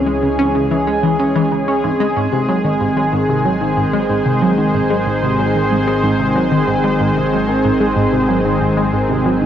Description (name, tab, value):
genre	ambient, sequencer-driven space music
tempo	93 BPM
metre	4/4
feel	straight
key	unclear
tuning	A4 = 439 Hz
part	lush unison pad	sustained chords	0.0-9.5 s	D#3 to C#5	-16 LUFS	equal	chorus
part	analog drone	bass	0.0-9.5 s	G#1 to C#2	-26 LUFS	equal	chorus, phaser
part	tight sequenced synth	riff	0.1-9.5 s	G#2 to C#4	-18 LUFS	equal	chorus, phaser, tape echo
part	vibraphone with soft mallets	arpeggios	0.2-9.5 s	B#3 to C#5	-21 LUFS	equal	auto-pan, low-pass filter, tape echo
room	wet plate reverb, RT60 2.2 s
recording	worn, warbling old tape, cassette tape, warbly pitch drift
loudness	-13 LUFS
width	side -10 dB against mid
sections	0.0-9.5 A section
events	none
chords	0.0 C#m; 1.8 G#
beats	0.55 1.19 | 1.84 2.48 3.13 3.77 | 4.42 5.06 5.71 6.35 | 7.00 7.64 8.29 8.94